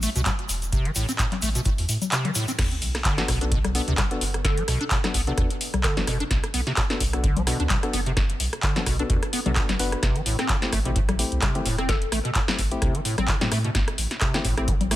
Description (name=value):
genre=acid house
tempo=129 BPM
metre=4/4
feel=swing 55% on 16ths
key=B phrygian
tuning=A4 = 440 Hz
part: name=acid bass, square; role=riff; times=0.0-15.0 s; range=A2 to D4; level=-29 LUFS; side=equal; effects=analog chorus, digital delay
part: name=warm sub bass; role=bass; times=0.0-15.0 s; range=E1 to A2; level=-28 LUFS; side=equal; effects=sidechain pumping
part: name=electro analog drum machine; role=drums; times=0.0-15.0 s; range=congas, crash cymbal, handclaps, hi-hat, rim click, snare drum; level=-26 LUFS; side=left 1 dB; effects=none
part: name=tube shaker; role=percussion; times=0.0-2.6 s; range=none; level=-31 LUFS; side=left 1 dB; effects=none
part: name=electronic kick drum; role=drums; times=0.3-14.8 s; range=none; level=-25 LUFS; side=equal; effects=none
part: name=sub drop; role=sound effects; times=2.6-4.4 s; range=none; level=-35 LUFS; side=equal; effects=none
part: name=percussive organ stab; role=stabs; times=3.2-15.0 s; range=A3 to B4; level=-32 LUFS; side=left 2 dB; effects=chorus, digital delay
part: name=hollow square pluck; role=melody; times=4.4-6.5, 11.9-12.1 s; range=A4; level=-34 LUFS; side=equal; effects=lush chorus, tape echo
room=light reverb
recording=none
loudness=-21 LUFS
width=side -15 dB against mid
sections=0.0-2.6 A section; 2.6-15.0 B section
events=drop 2.6-15.0; impact 2.6-4.4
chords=0.0 Am; 2.6 Bm7; 10.0 Am7